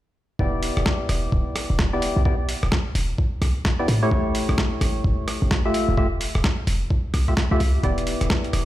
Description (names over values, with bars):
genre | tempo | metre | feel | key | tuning
UK garage, two-step garage | 129 BPM | 4/4 | swing 62% on 16ths | E minor | A4 = 435 Hz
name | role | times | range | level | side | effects
percussive organ stab | stabs | 0.4-8.7 s | A3 to E5 | -26 LUFS | left 1 dB | chorus, tape echo
short 808-style bass | bass | 0.4-8.7 s | D1 to A2 | -22 LUFS | equal | none
electronic kick drum | drums | 0.4-8.4 s | none | -23 LUFS | equal | overdrive
boom bap sampler-style drum kit | drums | 0.6-8.6 s | hi-hat, rim click, snare drum | -27 LUFS | equal | overdrive
room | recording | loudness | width
light reverb | played on a big sound system in a bare room, large studio reverb | -20 LUFS | side -14 dB against mid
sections
0.4-8.7 A section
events
none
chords
0.4 Em7; 3.9 A7; 5.7 Fmaj9; 7.8 Em7